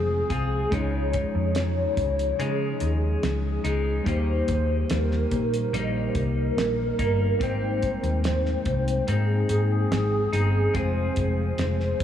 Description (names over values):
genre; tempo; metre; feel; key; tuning
indie pop, bedroom pop; 72 BPM; 4/4; straight; Ab major; A4 = 440 Hz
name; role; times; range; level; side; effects
hollow clarinet-like synth lead; melody; 0.0-12.0 s; Ab4 to Eb5; -28 LUFS; equal; ensemble chorus, analog delay
clean electric guitar; accompaniment; 0.0-12.0 s; Ab2 to Ab4; -32 LUFS; left 6 dB; wide subtle chorus, warbly pitch drift
warbly lo-fi synth keys; accompaniment; 0.0-12.0 s; G3 to G5; -33 LUFS; right 2 dB; chorus, cassette tape
hollow-body short-scale picked electric bass; bass; 0.0-12.0 s; F1 to Db3; -26 LUFS; equal; none
cloth-damped thuddy drum kit; drums; 0.3-12.0 s; hi-hat, kick drum, snare drum; -32 LUFS; equal; none
room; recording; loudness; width
moderate cathedral reverb, RT60 6.8 s; dreamy mix soaked in reverb; -22 LUFS; side -10 dB against mid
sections
0.0-12.0 A section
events
none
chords
0.0 Fm; 0.7 Dbadd9; 4.1 Eb; 7.4 Abmaj7; 10.8 Fm